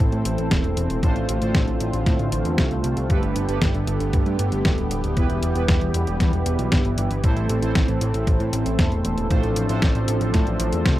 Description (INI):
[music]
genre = italo disco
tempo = 116 BPM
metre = 4/4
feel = straight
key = D dorian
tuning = A4 = 441 Hz
[part]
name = warm analog pad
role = sustained chords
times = 0.0-11.0 s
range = D3 to A4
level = -27 LUFS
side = equal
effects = chorus
[part]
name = analog synth brass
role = stabs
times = 0.0-11.0 s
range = A2 to C5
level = -27 LUFS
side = right 2 dB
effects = chorus, vintage 12-bit sampler grit, tape echo
[part]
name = fat analog bass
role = bass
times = 0.0-11.0 s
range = D1 to A2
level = -24 LUFS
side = equal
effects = none
[part]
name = detuned 8-bit digital drum machine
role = drums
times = 0.1-11.0 s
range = hi-hat, snare drum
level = -25 LUFS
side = equal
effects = none
[part]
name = electronic kick drum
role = drums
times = 0.5-11.0 s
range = none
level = -21 LUFS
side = equal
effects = none
[sound]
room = little or no reverb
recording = dry, close 1970s-style studio recording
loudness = -19 LUFS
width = side -14 dB against mid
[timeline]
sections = 0.0-11.0 A section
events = none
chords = 0.0 Am; 1.0 Dm7/A; 3.1 Gadd9; 5.2 Em; 7.2 Am; 9.3 Dm7/A